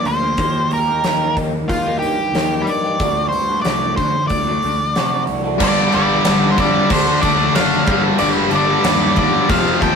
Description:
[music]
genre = quiet-loud alternative rock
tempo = 92 BPM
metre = 4/4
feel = straight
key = G minor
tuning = A4 = 440 Hz
[part]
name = octave-fuzz lead guitar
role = melody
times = 0.0-10.0 s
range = F4 to G5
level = -19 LUFS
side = equal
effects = distortion
[part]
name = electric guitar through a small old amp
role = arpeggios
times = 0.0-5.6 s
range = Bb2 to G4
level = -23 LUFS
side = equal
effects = phaser
[part]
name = fuzz picked electric bass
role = bass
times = 0.0-10.0 s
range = F1 to D3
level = -25 LUFS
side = equal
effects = overdrive
[part]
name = big rock drum kit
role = drums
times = 0.1-10.0 s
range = crash cymbal, hi-hat, kick drum, snare drum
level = -21 LUFS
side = equal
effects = none
[part]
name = distorted electric guitar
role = riff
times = 5.6-10.0 s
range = F2 to D4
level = -18 LUFS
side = left 6 dB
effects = overdrive
[part]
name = fuzz guitar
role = riff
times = 5.6-10.0 s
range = F2 to D4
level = -22 LUFS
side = equal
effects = distortion
[part]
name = tight distorted guitar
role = riff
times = 5.6-10.0 s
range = F2 to D4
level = -20 LUFS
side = right 7 dB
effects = distortion
[sound]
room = moderate small room reverb, RT60 0.5 s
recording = rough rehearsal-room recording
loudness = -14 LUFS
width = side -6 dB against mid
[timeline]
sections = 0.0-5.6 A section; 5.6-10.0 B section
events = none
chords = 0.4 Eb; 3.0 D; 5.6 Gm; 6.9 Dm; 7.9 Gm

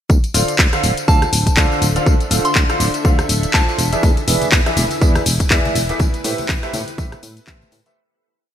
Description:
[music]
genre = piano house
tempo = 122 BPM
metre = 4/4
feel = swing 57% on 16ths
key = D dorian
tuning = A4 = 440 Hz
[part]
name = solid FM bass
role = bass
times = 0.1-7.8 s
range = D1 to A2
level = -20 LUFS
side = equal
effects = sidechain pumping
[part]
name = electronic kick drum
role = drums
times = 0.1-7.6 s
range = none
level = -15 LUFS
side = equal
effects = none
[part]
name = house drum kit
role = drums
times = 0.1-7.9 s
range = handclaps, hi-hat, rim click, tambourine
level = -19 LUFS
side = left 1 dB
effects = none
[part]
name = granular cloud pad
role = texture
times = 1.0-8.0 s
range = D4 to E5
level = -28 LUFS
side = equal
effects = built-in reverb, sidechain pumping
[part]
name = warm baby grand piano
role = riff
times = 0.3-8.0 s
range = D3 to F5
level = -22 LUFS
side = right 1 dB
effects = wide subtle chorus, sidechain pumping, digital delay
[part]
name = soft synth bell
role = melody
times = 1.1-3.8 s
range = A5 to C6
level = -23 LUFS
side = equal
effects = chorus, digital delay
[part]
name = tambourine and congas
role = percussion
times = 4.0-7.9 s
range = none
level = -28 LUFS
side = left 2 dB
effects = none
[sound]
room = light reverb, digital ambience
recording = bright 1980s-style digital production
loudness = -13 LUFS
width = side -10 dB against mid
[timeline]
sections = 0.1-8.0 drop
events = drop 0.1-8.0; fade-out 5.3-8.0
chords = 0.1 Dm7; 3.8 E7; 6.0 Am9

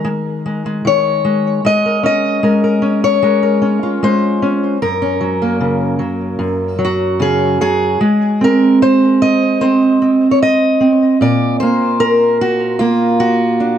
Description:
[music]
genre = folk, solo fingerstyle acoustic guitar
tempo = 76 BPM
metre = 4/4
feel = straight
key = Ab mixolydian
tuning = A4 = 443 Hz
[part]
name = fingerpicked steel-string acoustic guitar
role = solo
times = 0.0-13.8 s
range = Gb2 to Eb5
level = -12 LUFS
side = equal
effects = tape echo
[sound]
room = light reverb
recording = dark, warm production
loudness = -12 LUFS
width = side -9 dB against mid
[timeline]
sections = 0.0-8.0 A section; 8.0-13.8 B section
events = none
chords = 0.0 Absus2; 1.6 Db6/Ab; 4.8 Gb; 8.0 Ab; 11.2 Bb

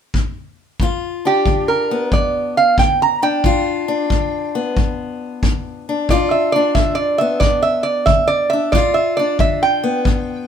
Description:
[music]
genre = acoustic country blues, solo or duo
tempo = 91 BPM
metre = 4/4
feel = swing 66% on 8ths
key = G mixolydian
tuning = A4 = 440 Hz
[part]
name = kick drum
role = drums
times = 0.1-10.3 s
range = none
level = -18 LUFS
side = equal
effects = none
[part]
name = fingerpicked steel-string acoustic guitar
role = accompaniment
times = 0.8-10.5 s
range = G2 to F4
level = -21 LUFS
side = left 6 dB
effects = none
[part]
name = lap resonator guitar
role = melody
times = 1.3-10.5 s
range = G4 to Bb5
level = -16 LUFS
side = right 3 dB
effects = none
[sound]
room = light reverb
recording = minimal, uncompressed stereo recording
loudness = -14 LUFS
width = side -8 dB against mid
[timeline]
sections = 0.8-10.5 A section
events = resonator guitar played with a steel bar solo 0.8-10.5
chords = 0.0 N.C.; 0.8 G7

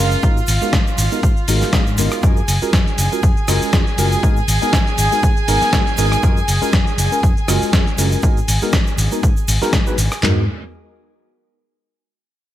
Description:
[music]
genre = filtered disco house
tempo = 120 BPM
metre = 4/4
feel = swing 55% on 16ths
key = G# dorian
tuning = A4 = 440 Hz
[part]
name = mellow tine electric piano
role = accompaniment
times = 0.0-10.4 s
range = G#3 to B4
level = -23 LUFS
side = equal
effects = medium stereo tremolo, phaser, sidechain pumping
[part]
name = warm studio violin section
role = sustained chords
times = 0.0-10.2 s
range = E#4 to G#5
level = -23 LUFS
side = right 1 dB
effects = sidechain pumping
[part]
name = vintage muted fingered electric bass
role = bass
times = 0.0-10.5 s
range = F#1 to G#2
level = -19 LUFS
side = equal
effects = tube saturation, sidechain pumping
[part]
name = dusty soul sampler-style drum kit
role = drums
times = 0.1-10.2 s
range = hi-hat, rim click, shaker, snare drum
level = -21 LUFS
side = left 1 dB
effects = sidechain pumping on cymbals, sidechain pumping on perc, sidechain pumping on hats, gated reverb
[part]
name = egg shaker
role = percussion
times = 0.1-10.2 s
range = none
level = -31 LUFS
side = right 3 dB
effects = none
[part]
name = punchy analog drum machine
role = drums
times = 0.2-10.4 s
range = handclaps, kick drum, snare drum, toms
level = -16 LUFS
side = equal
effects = none
[sound]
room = light reverb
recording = bright 1980s-style digital production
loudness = -14 LUFS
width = side -13 dB against mid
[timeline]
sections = 0.0-10.2 A section; 10.2-12.2 B section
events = drop 0.0-10.2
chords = 0.2 G#m7; 2.2 F#maj9; 4.2 G#m7; 6.2 F#maj9; 8.2 G#m7

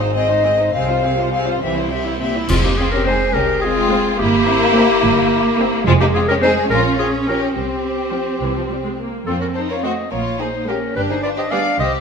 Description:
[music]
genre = cinematic, playful, whimsical film cue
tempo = 71 BPM (dotted quarters)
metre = 6/8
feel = straight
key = F minor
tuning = A4 = 440 Hz
[part]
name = warm studio violin section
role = melody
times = 0.0-12.0 s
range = Ab3 to F5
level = -23 LUFS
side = left 4 dB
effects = none
[part]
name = warm studio violin section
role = second line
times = 0.0-11.9 s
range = C4 to D5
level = -24 LUFS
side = left 2 dB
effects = none
[part]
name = rich studio viola section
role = accompaniment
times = 0.0-11.7 s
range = E3 to F4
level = -26 LUFS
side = right 1 dB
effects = none
[part]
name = dark French horn section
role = sustained chords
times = 0.0-2.0 s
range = C5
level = -25 LUFS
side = left 7 dB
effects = none
[part]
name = dark studio double bass section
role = bass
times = 0.0-12.0 s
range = F1 to F2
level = -23 LUFS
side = right 4 dB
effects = none
[part]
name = warm studio cello section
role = bass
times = 0.0-12.0 s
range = Ab2 to D4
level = -23 LUFS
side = right 3 dB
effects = none
[part]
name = mellow hollow silver concert flute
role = second line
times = 0.2-1.6 s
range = Eb5 to F5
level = -19 LUFS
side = left 2 dB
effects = none
[part]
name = warm clarinet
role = second line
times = 2.5-11.9 s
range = F4 to F5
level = -20 LUFS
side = left 1 dB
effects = none
[part]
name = clash cymbals and concert bass drum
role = percussion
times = 2.5-3.6 s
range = none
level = -25 LUFS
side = equal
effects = none
[sound]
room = moderate scoring stage reverb, RT60 1.7 s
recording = none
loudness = -15 LUFS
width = side -6 dB against mid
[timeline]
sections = 0.0-2.5 A section; 2.5-12.0 B section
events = band accent 2.5-3.1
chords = 0.0 Ab; 0.7 Fm/C; 1.6 C; 2.5 Fm; 4.2 C7/G; 5.9 Fm; 6.7 Bbm; 7.5 Csus4; 8.4 C; 9.3 F; 10.1 Bbm9; 11.0 G

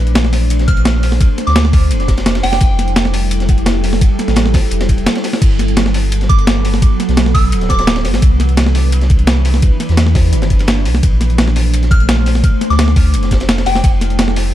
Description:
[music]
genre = liquid drum and bass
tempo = 171 BPM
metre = 4/4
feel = straight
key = unclear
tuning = A4 = 440 Hz
[part]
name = glassy FM pad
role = sustained chords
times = 0.0-14.5 s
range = E3 to C5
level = -20 LUFS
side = equal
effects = ensemble chorus, built-in reverb, sidechain pumping
[part]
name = warm sub bass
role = bass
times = 0.0-14.5 s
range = D1 to E2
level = -14 LUFS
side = equal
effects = none
[part]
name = breakbeat sampler-style drum kit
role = drums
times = 0.1-14.4 s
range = crash cymbal, hi-hat, snare drum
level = -17 LUFS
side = equal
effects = none
[part]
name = crunchy breakbeat drum kit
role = drums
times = 0.2-14.5 s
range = ride cymbal, snare drum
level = -25 LUFS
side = equal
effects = high-pass filter on cymbals, high-pass filter on snare, high-pass filter on room
[part]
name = soft synth bell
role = melody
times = 0.7-2.9, 6.3-7.8, 11.9-14.2 s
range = G5 to F6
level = -22 LUFS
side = equal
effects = chorus, phaser, dub echo
[part]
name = electronic kick drum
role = drums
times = 0.7-13.9 s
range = none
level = -12 LUFS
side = equal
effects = none
[sound]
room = digital ambience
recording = dark, warm production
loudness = -10 LUFS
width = side -12 dB against mid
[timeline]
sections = 0.0-14.5 A section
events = none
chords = 0.0 Bbmaj9; 2.4 Fmaj9; 5.4 Gmaj9; 8.2 Cmaj9; 11.0 Bbmaj9; 13.7 Fmaj9

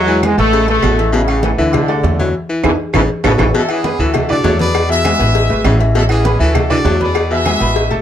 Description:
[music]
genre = latin, salsa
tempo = 199 BPM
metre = 4/4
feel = straight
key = A major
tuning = A4 = 440 Hz
[part]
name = brilliant trombone section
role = melody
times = 0.0-3.5 s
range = B2 to A3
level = -16 LUFS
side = left 1 dB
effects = plate reverb
[part]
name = bright upright piano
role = accompaniment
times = 0.0-8.0 s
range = E3 to D6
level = -20 LUFS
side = equal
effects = none
[part]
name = upright bass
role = bass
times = 0.0-8.0 s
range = G#1 to E2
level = -16 LUFS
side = right 1 dB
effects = none
[part]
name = bright baritone saxophone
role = second line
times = 0.1-7.8 s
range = B2 to F#3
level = -20 LUFS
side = left 2 dB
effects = none
[part]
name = congas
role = percussion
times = 0.1-8.0 s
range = none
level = -23 LUFS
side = left 1 dB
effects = none
[part]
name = claves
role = percussion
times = 0.2-7.6 s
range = none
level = -26 LUFS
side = right 2 dB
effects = none
[part]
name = cowbell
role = percussion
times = 0.2-7.9 s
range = none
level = -22 LUFS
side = left 5 dB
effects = none
[part]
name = timbales and agogo bells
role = percussion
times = 0.2-8.0 s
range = none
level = -23 LUFS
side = right 7 dB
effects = none
[part]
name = brilliant horn section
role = melody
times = 3.6-8.0 s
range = B3 to E5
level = -18 LUFS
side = left 2 dB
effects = plate reverb
[sound]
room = moderate studio reverb, RT60 0.5 s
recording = dark, warm production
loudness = -11 LUFS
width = side -10 dB against mid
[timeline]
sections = 0.0-3.5 A section; 3.5-8.0 B section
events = band accent 2.3-3.5; drum fill 2.6-3.5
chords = 0.0 E; 0.5 Aadd9; 1.7 Dadd9; 2.3 E; 2.9 Aadd9; 3.5 Dmaj13; 4.1 Dadd9; 4.7 E; 5.3 Aadd9; 6.5 Dadd9; 7.2 E

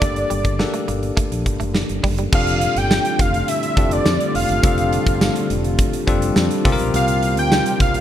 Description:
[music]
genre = 1980s-style pop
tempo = 104 BPM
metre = 4/4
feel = straight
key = F major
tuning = A4 = 440 Hz
[part]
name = wide unison lead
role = melody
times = 0.0-8.0 s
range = D5 to G5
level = -22 LUFS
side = equal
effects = ping-pong delay, plate reverb
[part]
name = bell-like tine electric piano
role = accompaniment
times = 0.0-8.0 s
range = Bb3 to Bb4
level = -23 LUFS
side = left 3 dB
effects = plate reverb
[part]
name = direct-recorded clean electric guitar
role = riff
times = 0.0-2.3 s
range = G3 to Bb3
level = -29 LUFS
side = right 5 dB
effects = analog chorus, ping-pong delay
[part]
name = mellow fretless electric bass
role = bass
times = 0.0-8.0 s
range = F1 to F2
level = -23 LUFS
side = equal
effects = lush chorus
[part]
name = big rock drum kit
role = drums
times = 0.0-8.0 s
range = crash cymbal, hi-hat, kick drum, snare drum, tambourine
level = -20 LUFS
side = equal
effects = gated reverb
[part]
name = chorused pulse-width pad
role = sustained chords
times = 2.3-8.0 s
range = C3 to F4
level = -26 LUFS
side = equal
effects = plate reverb
[sound]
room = light reverb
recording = none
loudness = -16 LUFS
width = side -11 dB against mid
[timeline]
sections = 0.0-2.3 A section; 2.3-8.0 B section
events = none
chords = 0.0 Gmadd9; 2.3 F69; 6.7 C7sus4

